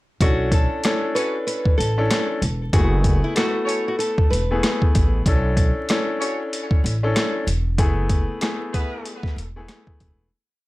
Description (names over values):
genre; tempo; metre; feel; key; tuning
hip hop, boom-bap hip-hop; 95 BPM; 4/4; swing 62% on 16ths; B minor; A4 = 440 Hz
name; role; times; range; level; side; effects
nylon-string guitar; melody; 0.2-5.2 s; E4 to B4; -26 LUFS; equal; high-pass filter, low-pass filter, digital delay
warm upright piano; accompaniment; 0.2-10.3 s; A3 to A4; -25 LUFS; left 2 dB; high-pass filter, low-pass filter
upright bass; bass; 0.2-10.3 s; E1 to B1; -22 LUFS; equal; none
boom bap sampler-style drum kit; drums; 0.2-10.2 s; hi-hat, kick drum, rim click, snare drum; -20 LUFS; equal; vintage 12-bit sampler grit
dark horn section; stabs; 1.2-9.2 s; B3 to C#5; -30 LUFS; equal; high-pass filter, low-pass filter, digital delay
room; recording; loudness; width
light reverb; vinyl crackle; -18 LUFS; side -19 dB against mid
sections
0.2-10.3 verse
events
fade-out 7.8-10.3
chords
0.2 Bm11; 2.7 F#m11; 5.3 Bm11; 7.8 F#m11